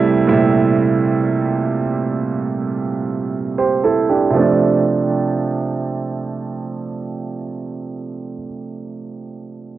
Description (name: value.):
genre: R&B.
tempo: 59 BPM.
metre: 4/4.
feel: straight.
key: D minor.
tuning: A4 = 440 Hz.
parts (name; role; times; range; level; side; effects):
clear baby grand piano; accompaniment; 0.0-9.8 s; Bb2 to C5; -17 LUFS; right 4 dB; none.
room: light reverb.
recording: home recording on cassette, low-pass filter.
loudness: -16 LUFS.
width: side -13 dB against mid.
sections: 0.0-4.3 A section; 4.3-8.4 B section.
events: filter sweep 0.0-4.3.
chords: 0.0 Am7; 4.3 Dm7.